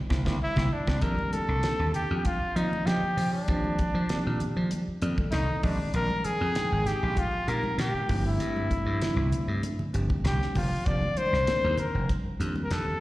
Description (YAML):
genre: electric jazz fusion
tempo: 98 BPM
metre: 4/4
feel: straight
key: F mixolydian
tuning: A4 = 442 Hz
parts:
  - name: bell-like tine electric piano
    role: accompaniment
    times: 0.1-13.0 s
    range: Eb3 to G5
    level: -34 LUFS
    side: right 1 dB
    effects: phaser, slapback echo
  - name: slap bass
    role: bass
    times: 0.1-12.9 s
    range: F1 to F3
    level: -28 LUFS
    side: equal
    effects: none
  - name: damped 70s drum kit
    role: drums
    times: 0.1-12.9 s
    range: hi-hat, kick drum, snare drum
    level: -31 LUFS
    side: equal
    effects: none
  - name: congas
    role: percussion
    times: 0.1-12.7 s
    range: none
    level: -35 LUFS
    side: equal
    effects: slapback echo
  - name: clear trumpet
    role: melody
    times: 0.4-13.0 s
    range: D4 to D5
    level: -30 LUFS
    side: left 1 dB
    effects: slapback echo
room: light reverb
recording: live gig heard through the venue's PA, recital hall reverb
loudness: -25 LUFS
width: side -17 dB against mid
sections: 0.0-1.0 A section; 1.0-13.0 B section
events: band accent 0.0-1.0; drum fill 0.4-1.0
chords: 0.0 C7; 1.0 F13sus4; 5.6 Bb13sus4; 8.1 G13sus4; 10.9 F13sus4